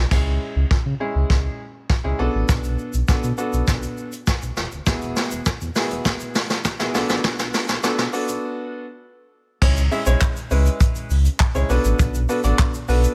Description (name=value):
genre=dance-pop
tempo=101 BPM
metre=4/4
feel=straight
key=unclear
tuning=A4 = 435 Hz
part: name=sub bass with octave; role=bass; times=0.0-13.1 s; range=D1 to C#3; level=-23 LUFS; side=equal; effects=sidechain pumping
part: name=clear grand piano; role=accompaniment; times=0.1-13.1 s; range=G#3 to E5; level=-28 LUFS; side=equal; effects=sidechain pumping
part: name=vintage brush drum kit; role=drums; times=0.1-13.1 s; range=crash cymbal, handclaps, hi-hat, kick drum, shaker, snare drum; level=-23 LUFS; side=equal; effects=none
room=light reverb, small room ambience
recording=high-pass filter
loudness=-21 LUFS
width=mono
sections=0.1-9.6 A section; 9.6-13.1 B section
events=build-up 0.1-9.6; drum fill 0.1-8.4; filter sweep 0.1-9.6; break 8.4-9.6; drop 9.6-13.1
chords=0.1 C#m; 2.2 Bm7; 4.9 Eadd9; 6.9 Bm7; 9.6 C#m; 11.7 Bm7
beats=| 0.11 0.71 1.30 1.90 | 2.49 3.08 3.68 4.27 | 4.87 5.46 6.05 6.65 | 7.24 7.84 8.43 9.02 | 9.62 10.21 10.81 11.40 | 11.99 12.59